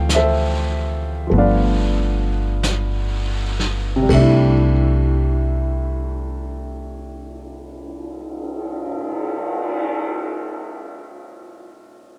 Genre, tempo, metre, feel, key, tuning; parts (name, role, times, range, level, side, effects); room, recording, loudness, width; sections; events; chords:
jazz ballad; 39-51 BPM; 4/4; swing 66% on 8ths; C major; A4 = 439 Hz
warm concert grand piano; accompaniment; 0.0-12.2 s; C3 to G5; -24 LUFS; equal
upright bass; bass; 0.0-8.9 s; G1 to D2; -22 LUFS; equal
vintage brush drum kit; drums; 0.1-9.8 s; brushed snare drum, cymbal swell, hi-hat, kick drum, ride cymbal, snare drum; -30 LUFS; equal
little or no reverb; -20 LUFS; mono
0.0-4.1 A section; 4.1-10.1 B section
slowing down 0.0-4.1
0.0 Dm7; 1.3 G7; 4.1 C69